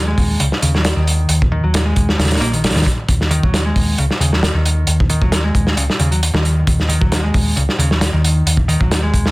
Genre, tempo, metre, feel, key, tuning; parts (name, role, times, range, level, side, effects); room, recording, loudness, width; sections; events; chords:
breakbeat, breaks; 134 BPM; 4/4; swing 54% on 16ths; Eb minor; A4 = 439 Hz
modern bright picked electric bass; riff; 0.0-9.3 s; Db3 to Bb3; -20 LUFS; equal; dub echo
hollow-body short-scale fingered electric bass; bass; 0.0-9.3 s; Bb1 to Eb2; -17 LUFS; equal
crunchy breakbeat drum kit; drums; 0.2-9.3 s; hi-hat, kick drum, snare drum; -16 LUFS; equal
light reverb; dense, heavily limited modern master; -13 LUFS; side -22 dB against mid
0.0-9.3 A section
0.0 Ebm